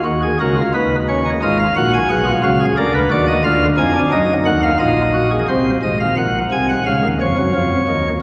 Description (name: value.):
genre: classical, baroque-style 3-part fugue for pipe organ.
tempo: 88 BPM.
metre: 4/4.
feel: straight.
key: Eb minor.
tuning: A4 = 438 Hz.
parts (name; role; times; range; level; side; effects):
pipe organ, sparkling flutes; solo; 0.0-8.1 s; Ab1 to Ab5; -16 LUFS; equal; none.
room: wet cathedral reverb, RT60 4.8 s.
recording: vinyl crackle.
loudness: -16 LUFS.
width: mono.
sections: 0.1-5.5 A section; 5.5-8.2 B section.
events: none.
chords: 0.1 Ebm; 1.4 Fm7b5/Ab; 2.8 Bb7/D; 4.1 Ebm; 5.5 Ab7; 6.9 Db.